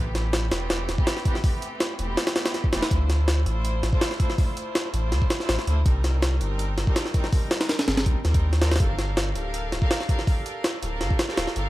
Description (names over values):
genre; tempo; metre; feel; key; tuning
drum and bass, jungle; 163 BPM; 4/4; straight; D minor; A4 = 439 Hz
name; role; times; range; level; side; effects
rich chamber string section; sustained chords; 0.0-11.7 s; E3 to F5; -32 LUFS; right 1 dB; none
soft dub sub bass; bass; 0.0-11.7 s; D1 to Eb2; -24 LUFS; equal; tube saturation
jungle sampler-style drum kit; drums; 0.1-11.7 s; hi-hat, kick drum, snare drum; -24 LUFS; equal; none
room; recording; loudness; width
digital ambience; vinyl crackle; -22 LUFS; side -17 dB against mid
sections
0.0-11.7 A section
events
none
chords
0.0 Am7; 2.9 Dm7; 5.9 Cm7; 8.8 Gm7